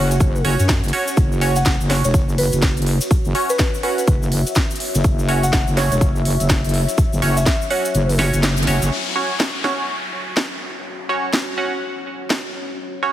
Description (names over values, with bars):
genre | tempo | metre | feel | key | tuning
bass house | 124 BPM | 4/4 | swing 61% on 16ths | unclear | A4 = 439 Hz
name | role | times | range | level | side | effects
soft synth bell | melody | 0.0-8.2 s | B4 to F#5 | -25 LUFS | left 1 dB | chorus, tape echo
band-passed chord stab | stabs | 0.0-13.1 s | C#4 to F#5 | -24 LUFS | right 2 dB | phaser, sidechain pumping, tape echo
wobble bass | bass | 0.0-8.9 s | E1 to F#2 | -18 LUFS | equal | chorus, tube saturation, sidechain pumping
deep dark ambient pad | texture | 0.0-13.1 s | F#4 to F#5 | -29 LUFS | equal | chorus, built-in reverb, sidechain pumping
house drum kit | drums | 0.1-12.4 s | hi-hat, snare drum | -23 LUFS | equal | none
cabasa | percussion | 0.1-8.9 s | none | -30 LUFS | left 2 dB | none
electronic kick drum | drums | 0.2-7.6 s | none | -18 LUFS | equal | none
downlifter | sound effects | 8.9-12.8 s | none | -28 LUFS | left 3 dB | none
room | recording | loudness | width
light reverb | heavily compressed radio sound | -16 LUFS | side -12 dB against mid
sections
0.0-8.9 A section; 8.9-13.1 B section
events
kick drops out 7.9-8.9; band accent 8.4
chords
0.0 F#5